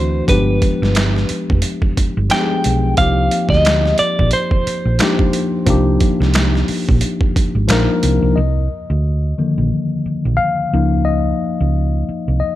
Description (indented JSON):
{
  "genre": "R&B, neo-soul",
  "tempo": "89 BPM",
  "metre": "4/4",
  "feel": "swing 57% on 16ths",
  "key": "C minor",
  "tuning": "A4 = 440 Hz",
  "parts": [
    { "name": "clean electric guitar", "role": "melody", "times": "0.0-7.7 s", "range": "B4 to G5", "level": "-19 LUFS", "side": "right 1 dB", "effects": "tremolo, slapback echo" },
    { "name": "tine electric piano", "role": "accompaniment", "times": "0.0-12.6 s", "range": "D3 to F5", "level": "-18 LUFS", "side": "left 3 dB", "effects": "none" },
    { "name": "hollow-body short-scale fingered electric bass", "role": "bass", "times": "0.0-12.4 s", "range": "F1 to D2", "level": "-16 LUFS", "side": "right 1 dB", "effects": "none" },
    { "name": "boom bap sampler-style drum kit", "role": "drums", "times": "0.3-8.2 s", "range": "finger snaps, hi-hat, kick drum, snare drum", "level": "-18 LUFS", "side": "right 1 dB", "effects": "overdrive" }
  ],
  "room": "light reverb",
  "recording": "none",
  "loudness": "-14 LUFS",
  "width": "side -14 dB against mid",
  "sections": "0.0-8.4 A section; 8.4-12.6 B section",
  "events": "tine electric piano solo 8.4-12.6",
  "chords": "0.3 G7b9; 3.0 Cm11; 10.7 Db69"
}